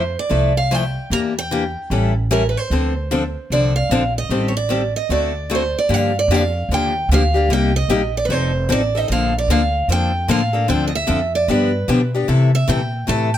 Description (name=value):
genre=acoustic string swing (jazz manouche)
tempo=150 BPM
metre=4/4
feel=swing 62% on 8ths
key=D minor, G minor from 5.9 s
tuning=A4 = 440 Hz
part: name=picked steel-string acoustic guitar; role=melody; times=0.0-13.4 s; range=Bb4 to Bb5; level=-21 LUFS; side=right 3 dB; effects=plate reverb
part: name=picked acoustic archtop guitar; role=accompaniment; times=0.0-13.3 s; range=C3 to A4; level=-20 LUFS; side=left 4 dB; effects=none
part: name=upright bass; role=bass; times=0.0-13.4 s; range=F1 to C3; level=-20 LUFS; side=equal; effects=none
room=light reverb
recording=none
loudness=-16 LUFS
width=side -11 dB against mid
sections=0.0-5.9 A section; 5.9-13.4 B section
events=none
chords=0.0 Fmaj7; 1.1 Em7b5; 1.9 A7; 2.7 Dm7; 4.3 Am7b5; 5.1 D7; 5.9 Gm7; 7.5 Cm7; 8.3 F7; 9.1 Bbmaj7; 10.7 Dm7; 11.5 G7; 12.3 C6